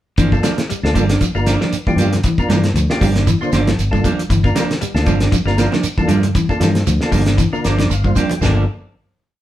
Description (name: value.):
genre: afrobeat.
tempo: 117 BPM.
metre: 4/4.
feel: swing 55% on 16ths.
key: G dorian.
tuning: A4 = 442 Hz.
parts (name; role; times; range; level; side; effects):
clean electric guitar; arpeggios; 0.2-8.6 s; G2 to G3; -23 LUFS; left 4 dB; none.
electric guitar at the edge of break-up; stabs; 0.2-8.6 s; F3 to D4; -22 LUFS; right 4 dB; none.
fingered electric bass; bass; 0.2-8.7 s; G1 to G2; -17 LUFS; left 1 dB; none.
cloth-damped thuddy drum kit; drums; 0.2-8.6 s; crash cymbal, hi-hat, kick drum, snare drum, toms; -19 LUFS; equal; none.
shekere; percussion; 0.2-8.5 s; none; -28 LUFS; right 5 dB; none.
percussive tonewheel organ; accompaniment; 0.3-8.7 s; Bb3 to G5; -22 LUFS; equal; chorus vibrato, stopped rotary speaker.
congas; percussion; 0.4-8.5 s; none; -24 LUFS; right 4 dB; none.
room: moderate studio reverb, RT60 0.6 s.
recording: band playing live in one room.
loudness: -14 LUFS.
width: side -13 dB against mid.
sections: 0.2-8.4 groove; 8.4-9.4 final chord.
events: tonewheel organ fill 7.4-8.4; drum fill 8.0-8.4.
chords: 0.2 Gm7.